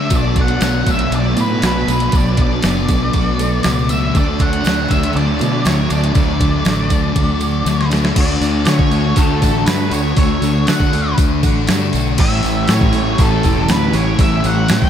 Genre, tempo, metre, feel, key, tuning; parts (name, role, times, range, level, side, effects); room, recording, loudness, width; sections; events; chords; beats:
rock, shoegaze and dream pop; 119 BPM; 4/4; straight; D major; A4 = 439 Hz
octave-fuzz lead guitar; melody; 0.0-14.9 s; A4 to G5; -22 LUFS; left 1 dB; distortion, diffuse ambient delay
picked twelve-string acoustic guitar; arpeggios; 0.0-14.9 s; E3 to G4; -26 LUFS; right 10 dB; analog chorus, diffuse ambient delay
biting overdriven guitar; riff; 0.0-14.9 s; A2 to G4; -22 LUFS; right 9 dB; reverse reverb
thick fuzz guitar; riff; 0.0-14.9 s; A2 to D4; -20 LUFS; left 10 dB; distortion, analog chorus
growling fingered electric bass; bass; 0.1-14.9 s; E1 to D3; -19 LUFS; equal; overdrive
detuned 8-bit digital drum machine; drums; 0.1-14.9 s; crash cymbal, hi-hat, kick drum, snare drum; -17 LUFS; equal
tambourine; percussion; 0.1-14.8 s; -33 LUFS; right 14 dB
light reverb; -13 LUFS; side -9 dB against mid
0.0-8.2 A section; 8.2-14.9 B section
drum fill 7.7-8.2
0.1 Bm7; 4.1 D; 8.2 Dmaj7; 12.2 A7
| 0.10 0.61 1.11 1.62 | 2.12 2.62 3.13 3.63 | 4.14 4.64 5.14 5.65 | 6.15 6.65 7.16 7.66 | 8.16 8.67 9.17 9.67 | 10.18 10.68 11.18 11.68 | 12.18 12.69 13.19 13.69 | 14.19 14.70